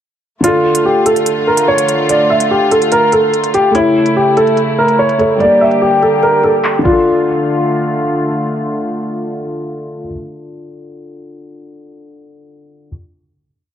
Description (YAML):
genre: hip hop, drill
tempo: 145 BPM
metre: 4/4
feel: half-time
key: D harmonic minor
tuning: A4 = 441 Hz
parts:
  - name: dark concert grand piano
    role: melody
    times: 0.4-8.3 s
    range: E4 to E5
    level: -12 LUFS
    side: equal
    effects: low-pass filter, digital delay
  - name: felt-muted upright piano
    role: accompaniment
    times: 0.4-12.9 s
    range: D3 to E5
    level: -18 LUFS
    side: left 2 dB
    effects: low-pass filter
  - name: dark studio string section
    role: sustained chords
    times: 0.4-10.1 s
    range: C#3 to G4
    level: -18 LUFS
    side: equal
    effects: none
  - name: drill drum kit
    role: drums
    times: 0.4-6.9 s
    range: crash cymbal, handclaps, hi-hat, kick drum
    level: -20 LUFS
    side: right 1 dB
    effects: none
room: moderate recital hall reverb, RT60 1.6 s, small room ambience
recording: low-pass filter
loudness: -10 LUFS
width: side -9 dB against mid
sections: 0.4-7.1 breakdown; 7.1-10.4 final hit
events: filter sweep 0.4-7.1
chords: 0.4 Dm; 3.7 A; 5.4 Gm; 6.9 Dm